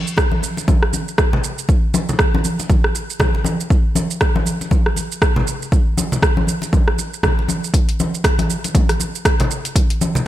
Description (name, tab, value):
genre	house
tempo	119 BPM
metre	4/4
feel	swing 58% on 16ths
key	none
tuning	none
part	deep house drum kit	drums	0.1-10.2 s	hi-hat, rim click, shaker, toms	-21 LUFS	right 2 dB	overdrive, small room ambience
part	electronic kick drum	drums	0.2-9.9 s	none	-16 LUFS	equal	overdrive, small room ambience
part	congas	percussion	0.2-10.2 s	none	-22 LUFS	left 1 dB	none
room	digital ambience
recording	none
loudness	-15 LUFS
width	side -13 dB against mid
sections	0.0-10.3 A section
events	none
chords	none